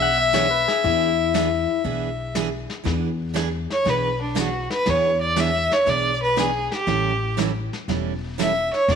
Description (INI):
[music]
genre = country, western swing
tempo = 119 BPM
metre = 4/4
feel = swing 69% on 8ths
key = E mixolydian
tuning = A4 = 440 Hz
[part]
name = clear fiddle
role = melody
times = 0.0-9.0 s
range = D4 to E5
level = -21 LUFS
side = equal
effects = slapback echo
[part]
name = hollow-body jazz guitar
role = second line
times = 0.0-2.3 s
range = B3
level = -46 LUFS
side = right 9 dB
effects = none
[part]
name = pedal steel guitar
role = second line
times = 0.0-1.8 s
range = E4 to F#5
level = -24 LUFS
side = left 17 dB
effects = none
[part]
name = picked steel-string acoustic guitar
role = accompaniment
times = 0.0-9.0 s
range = E3 to A4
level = -28 LUFS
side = right 10 dB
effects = none
[part]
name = upright bass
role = bass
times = 0.0-9.0 s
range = E1 to E2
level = -27 LUFS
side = left 3 dB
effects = none
[part]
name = vintage brush drum kit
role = drums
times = 0.3-9.0 s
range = brushed snare drum, hi-hat, snare drum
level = -31 LUFS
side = left 4 dB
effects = none
[sound]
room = moderate echo chamber reverb, RT60 1.9 s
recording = 1960s-style stereo with parts hard left and right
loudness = -19 LUFS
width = side -7 dB against mid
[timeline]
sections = 0.0-2.9 A section; 2.9-9.0 B section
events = fiddle solo 2.9-9.0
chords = 0.0 E7; 6.9 A7